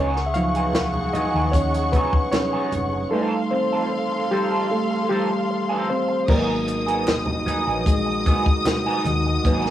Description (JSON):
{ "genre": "lush 1970s-style soul", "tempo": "76 BPM", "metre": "4/4", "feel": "straight", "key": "unclear", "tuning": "A4 = 440 Hz", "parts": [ { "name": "dark studio string section", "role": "second line", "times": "0.0-9.7 s", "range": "G#4 to D#6", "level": "-26 LUFS", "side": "left 1 dB", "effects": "none" }, { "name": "reed electric piano", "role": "accompaniment", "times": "0.0-9.7 s", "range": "E#3 to E#5", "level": "-24 LUFS", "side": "equal", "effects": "none" }, { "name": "electric guitar through a small old amp", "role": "riff", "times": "0.0-9.7 s", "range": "F3 to A4", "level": "-28 LUFS", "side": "right 4 dB", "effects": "wah" }, { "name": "hollow-body short-scale fingered electric bass", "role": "bass", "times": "0.0-9.7 s", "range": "F#1 to D#2", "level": "-26 LUFS", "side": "left 1 dB", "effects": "none" }, { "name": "compact cocktail drum kit", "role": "drums", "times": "0.2-9.7 s", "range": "crash cymbal, hi-hat, kick drum, snare drum", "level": "-22 LUFS", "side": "equal", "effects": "cassette tape" }, { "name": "congas", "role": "percussion", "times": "0.7-9.7 s", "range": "none", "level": "-32 LUFS", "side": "right 3 dB", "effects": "none" }, { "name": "group handclap", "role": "percussion", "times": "0.8-8.8 s", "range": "none", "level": "-40 LUFS", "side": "left 2 dB", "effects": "none" }, { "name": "warm French horn section", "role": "sustained chords", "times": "6.3-9.7 s", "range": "D#3 to F#4", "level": "-29 LUFS", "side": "equal", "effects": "none" } ], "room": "light reverb, studio reverb", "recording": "home recording on cassette", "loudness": "-19 LUFS", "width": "side -12 dB against mid", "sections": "0.0-6.3 A section; 6.3-9.7 B section", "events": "reed electric piano solo 0.0-6.3, 6.3-9.7", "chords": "0.0 C#9sus4; 3.1 F7; 6.3 G#m7", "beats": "0.74 1.53 2.33 | 3.12 3.91 4.70 5.49 | 6.28 7.07 7.87 8.66 | 9.45" }